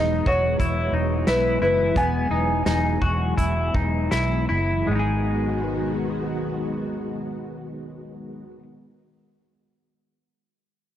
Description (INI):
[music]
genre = dream pop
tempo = 77-90 BPM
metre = 4/4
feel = straight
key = G# minor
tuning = A4 = 439 Hz
[part]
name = felt-muted upright piano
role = melody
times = 0.0-4.1 s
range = B4 to G#5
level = -24 LUFS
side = equal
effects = analog delay
[part]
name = string machine, cellos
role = sustained chords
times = 0.0-8.5 s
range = D#3 to F#4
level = -28 LUFS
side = equal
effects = ensemble chorus
[part]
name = semi-hollow electric guitar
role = arpeggios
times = 0.0-8.6 s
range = G#3 to G#4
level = -26 LUFS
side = left 2 dB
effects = lush chorus, analog delay
[part]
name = vintage muted fingered electric bass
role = bass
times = 0.0-8.5 s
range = E1 to B1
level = -26 LUFS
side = equal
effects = none
[part]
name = loose indie drum kit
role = drums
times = 0.3-4.3 s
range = hi-hat, kick drum, snare drum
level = -26 LUFS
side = equal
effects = none
[sound]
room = light reverb, studio ambience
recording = dry, gritty hardware recording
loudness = -20 LUFS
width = side -11 dB against mid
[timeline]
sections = 0.0-4.9 A section; 4.9-8.0 B section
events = slowing down 0.0-4.9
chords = 0.0 Emaj7; 4.9 G#m7